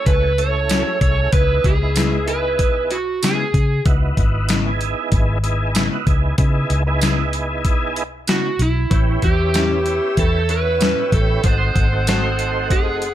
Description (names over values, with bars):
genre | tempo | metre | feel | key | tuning
straight-eighth soul blues | 95 BPM | 4/4 | swing 55% on 16ths | C# minor | A4 = 440 Hz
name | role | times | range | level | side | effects
overdriven slide guitar | melody | 0.0-3.8, 8.3-13.1 s | E4 to C#5 | -20 LUFS | right 2 dB | plate reverb
tonewheel organ | accompaniment | 0.0-13.1 s | A3 to A4 | -25 LUFS | right 3 dB | slow rotary speaker, chorus vibrato, plate reverb
vintage muted fingered electric bass | bass | 0.1-13.1 s | F#1 to C#3 | -20 LUFS | equal | none
dusty soul sampler-style drum kit | drums | 0.1-13.1 s | hi-hat, kick drum, snare drum, tambourine | -19 LUFS | equal | none
clean electric guitar | stabs | 0.7-12.3 s | A2 to A4 | -25 LUFS | left 5 dB | analog chorus, plate reverb
brilliant horn section | sustained chords | 8.9-13.1 s | B#3 to F#5 | -31 LUFS | left 1 dB | plate reverb
room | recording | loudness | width
light reverb | none | -16 LUFS | side -12 dB against mid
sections
0.0-13.1 A section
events
none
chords
0.0 F#m7; 1.3 C#m7; 8.9 A7; 11.4 G#7b9